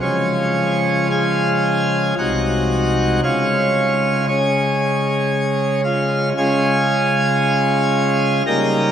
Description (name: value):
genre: classical, chorale-style piece for pipe organ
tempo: 57 BPM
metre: 3/4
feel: rubato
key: Db major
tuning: A4 = 437 Hz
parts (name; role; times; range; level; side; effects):
- pipe organ, plenum; solo; 0.0-8.9 s; C2 to Bb5; -15 LUFS; equal; none
room: wet church reverb, RT60 3.4 s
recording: none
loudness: -15 LUFS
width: side -9 dB against mid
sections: 0.0-8.9 A section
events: none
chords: 0.0 Db; 2.2 Ab/C; 3.2 Db